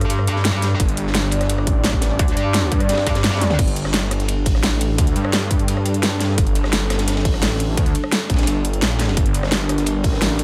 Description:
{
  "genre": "dark technical drum and bass",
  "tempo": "172 BPM",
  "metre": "4/4",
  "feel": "straight",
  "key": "G minor",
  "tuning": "A4 = 439 Hz",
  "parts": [
    { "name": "dark analog pad", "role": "sustained chords", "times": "0.0-10.4 s", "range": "G3 to D5", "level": "-28 LUFS", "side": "equal", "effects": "chorus, phaser, sidechain pumping" },
    { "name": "metallic wobble bass", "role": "bass", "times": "0.0-3.6 s", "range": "D2 to G2", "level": "-22 LUFS", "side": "equal", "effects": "chorus" },
    { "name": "dubstep drum kit", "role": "drums", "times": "0.0-10.4 s", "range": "crash cymbal, hi-hat, rim click, snare drum, toms", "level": "-24 LUFS", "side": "equal", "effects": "studio reverb" },
    { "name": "crunchy breakbeat drum kit", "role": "drums", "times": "0.1-10.4 s", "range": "hi-hat, ride cymbal, snare drum", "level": "-32 LUFS", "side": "equal", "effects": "high-pass filter on cymbals, studio reverb, high-pass filter on hats, high-pass filter on snare, high-pass filter on room" },
    { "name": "detuned saw bass", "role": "bass", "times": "0.8-10.4 s", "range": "G1 to G2", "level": "-23 LUFS", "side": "equal", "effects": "chorus, tube saturation" },
    { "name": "electronic kick drum", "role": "drums", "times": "0.8-10.1 s", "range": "none", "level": "-22 LUFS", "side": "equal", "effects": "studio reverb" }
  ],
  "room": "studio reverb",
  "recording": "none",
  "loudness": "-19 LUFS",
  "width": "mono",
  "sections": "0.0-3.6 A section; 3.6-10.4 A section",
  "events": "drop 0.0-3.6, 3.6-10.4; drum fill 3.4",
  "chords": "0.0 G5"
}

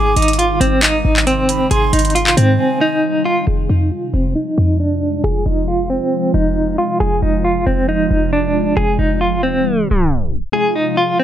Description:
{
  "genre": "hip hop, trap",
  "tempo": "136 BPM",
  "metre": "4/4",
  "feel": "half-time",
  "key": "unclear",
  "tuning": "A4 = 441 Hz",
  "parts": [
    { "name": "direct-recorded clean electric guitar", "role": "melody", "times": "0.0-11.2 s", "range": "C4 to Ab4", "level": "-16 LUFS", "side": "equal", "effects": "tremolo, low-pass filter" },
    { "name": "mellow hollow jazz flute", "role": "second line", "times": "0.0-3.0 s", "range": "Ab5 to D6", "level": "-24 LUFS", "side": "right 4 dB", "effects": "digital delay" },
    { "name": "ethereal airy pad", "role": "sustained chords", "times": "0.0-11.2 s", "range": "C3 to F4", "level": "-21 LUFS", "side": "right 1 dB", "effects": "ensemble chorus, built-in reverb, phaser, low-pass filter" },
    { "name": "short 808-style bass", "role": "bass", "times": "0.0-10.5 s", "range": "F1 to Ab2", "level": "-18 LUFS", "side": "equal", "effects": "none" },
    { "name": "trap drum kit", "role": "drums", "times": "0.2-2.5 s", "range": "handclaps, hi-hat", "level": "-17 LUFS", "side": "equal", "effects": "none" }
  ],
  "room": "little or no reverb",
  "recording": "tape stop",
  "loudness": "-13 LUFS",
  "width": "side -10 dB against mid",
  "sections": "0.0-3.5 A section; 3.5-10.5 B section",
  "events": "break 2.6-3.5; filter sweep 3.5-10.5; tape stop 9.7-10.5",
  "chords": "0.0 Ab; 3.5 Fm"
}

